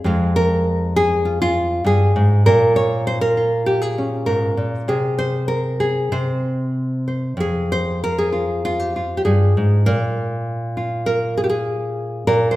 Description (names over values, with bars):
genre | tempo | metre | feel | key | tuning
folk, solo fingerstyle acoustic guitar | 99 BPM | 4/4 | rubato | unclear | A4 = 437 Hz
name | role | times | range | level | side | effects
nylon-string guitar | solo | 0.0-12.6 s | F2 to Db5 | -16 LUFS | equal | none
room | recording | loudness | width
wet recital hall reverb, RT60 1.4 s | recorded in a church or concert hall | -17 LUFS | side -16 dB against mid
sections
0.0-12.6 A section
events
none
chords
0.0 Fmadd11; 2.5 Bbm; 4.9 N.C.; 7.4 Fm; 9.9 Bb5